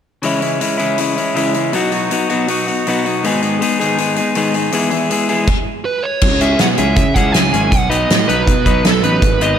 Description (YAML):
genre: indie rock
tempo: 160 BPM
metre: 4/4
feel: straight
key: C# minor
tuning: A4 = 440 Hz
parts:
  - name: overdriven electric guitar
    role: riff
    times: 0.2-9.6 s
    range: E2 to B4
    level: -16 LUFS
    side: left 2 dB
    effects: slapback echo
  - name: loose indie drum kit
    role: drums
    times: 0.2-9.5 s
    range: crash cymbal, hi-hat, kick drum, snare drum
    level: -18 LUFS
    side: equal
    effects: none
  - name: smooth overdriven lead guitar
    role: melody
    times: 5.9-9.6 s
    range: A4 to G#5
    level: -18 LUFS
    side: right 5 dB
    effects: slapback echo, digital delay
  - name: twangy electric guitar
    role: riff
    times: 6.2-9.6 s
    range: none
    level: barely audible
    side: none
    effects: none
  - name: fuzz picked electric bass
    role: bass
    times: 6.2-9.5 s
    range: G#1 to C#3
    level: -18 LUFS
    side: right 1 dB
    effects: overdrive
room: moderate lush hall reverb, RT60 1.9 s, studio ambience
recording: big arena sound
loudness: -13 LUFS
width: side -8 dB against mid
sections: 0.2-6.2 A section; 6.2-9.6 B section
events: none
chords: 0.2 C#m; 1.7 B; 3.2 G#m; 4.7 E; 6.2 C#m; 7.7 B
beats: | 0.23 0.61 0.98 1.36 | 1.74 2.11 2.49 2.86 | 3.24 3.62 3.99 4.37 | 4.74 5.11 5.49 5.86 | 6.24 6.61 6.98 7.35 | 7.73 8.10 8.47 8.84 | 9.22 9.59